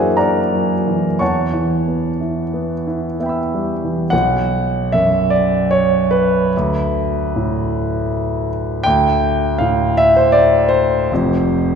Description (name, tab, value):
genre	classical, impressionist solo piano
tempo	57-82 BPM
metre	3/4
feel	rubato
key	B minor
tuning	A4 = 440 Hz
part	warm concert grand piano	solo	0.0-11.8 s	F1 to E6	-14 LUFS	equal	none
room	wet concert hall reverb, RT60 1.9 s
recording	recorded in a church or concert hall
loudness	-14 LUFS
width	side -6 dB against mid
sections	0.0-4.1 A section; 4.1-11.8 B section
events	none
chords	0.0 F#aug7; 1.2 Em6; 4.1 B5; 6.5 D5; 11.1 F5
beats	0.17 | 1.20 2.21 3.19 | 4.12 4.94 5.72 | 6.53 7.32 8.11 | 8.85 9.61 10.36 | 11.10